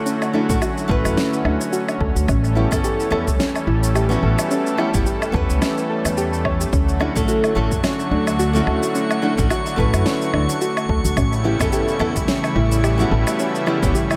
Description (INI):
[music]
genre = sunset chillout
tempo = 108 BPM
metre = 4/4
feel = swing 57% on 16ths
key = D major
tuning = A4 = 440 Hz
[part]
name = nylon-string guitar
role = accompaniment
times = 0.0-13.9 s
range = A3 to B4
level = -26 LUFS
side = equal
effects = dub echo
[part]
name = lush unison pad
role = sustained chords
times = 0.0-14.2 s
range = C#3 to A4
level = -26 LUFS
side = equal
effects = chorus
[part]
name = soft round pluck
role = arpeggios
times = 0.0-14.1 s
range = C#4 to C#5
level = -28 LUFS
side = equal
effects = chorus, dub echo
[part]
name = electronic shaker, woodblock and snare drum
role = drums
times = 0.1-14.2 s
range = none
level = -29 LUFS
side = equal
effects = analog delay
[part]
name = upright bass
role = bass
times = 0.5-13.9 s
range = G1 to F#2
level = -23 LUFS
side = equal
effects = none
[part]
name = electronic kick drum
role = drums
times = 0.5-13.9 s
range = none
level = -26 LUFS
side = equal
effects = overdrive
[part]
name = drifting glass-harmonics texture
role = texture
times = 7.5-14.2 s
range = C#6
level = -34 LUFS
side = equal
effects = chorus, built-in reverb
[sound]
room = moderate plate reverb, RT60 2.0 s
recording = echo-heavy mix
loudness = -19 LUFS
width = mono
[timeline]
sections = 0.0-14.2 A section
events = none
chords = 0.0 Dmaj7; 2.3 A7; 6.7 Dmaj7; 11.2 A7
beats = | 0.06 0.62 1.17 1.73 | 2.28 2.84 3.39 3.95 | 4.50 5.06 5.62 6.17 | 6.73 7.28 7.84 8.39 | 8.95 9.51 10.06 10.62 | 11.17 11.73 12.28 12.84 | 13.39 13.95